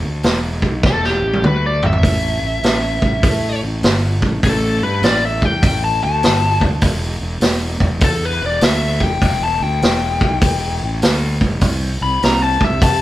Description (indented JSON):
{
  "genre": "blues rock power trio and southern rock",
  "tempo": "100 BPM",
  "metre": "4/4",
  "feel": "swing 65% on 8ths",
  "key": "E minor",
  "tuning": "A4 = 440 Hz",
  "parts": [
    { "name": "fuzz fingered electric bass", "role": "bass", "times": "0.0-13.0 s", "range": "E1 to C3", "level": "-20 LUFS", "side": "equal", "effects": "overdrive" },
    { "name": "vintage drum kit", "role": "drums", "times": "0.2-13.0 s", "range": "hi-hat, kick drum, snare drum, toms", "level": "-17 LUFS", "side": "equal", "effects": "none" },
    { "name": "biting lead guitar", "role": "melody", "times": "0.9-13.0 s", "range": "G4 to B5", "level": "-19 LUFS", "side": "left 2 dB", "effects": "overdrive" }
  ],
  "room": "light reverb",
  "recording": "band playing live in one room",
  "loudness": "-14 LUFS",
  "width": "side -15 dB against mid",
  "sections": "0.0-13.0 A section",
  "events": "lead electric guitar solo 0.0-13.0; drum fill 0.8-2.0",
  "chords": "0.0 E7(no3); 2.0 A5; 6.8 Em7; 11.6 N.C.",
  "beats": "0.24 0.83 1.43 | 2.03 2.63 3.23 3.83 | 4.43 5.03 5.63 6.23 | 6.83 7.42 8.02 8.62 | 9.22 9.82 10.42 11.02 | 11.62 12.22 12.82"
}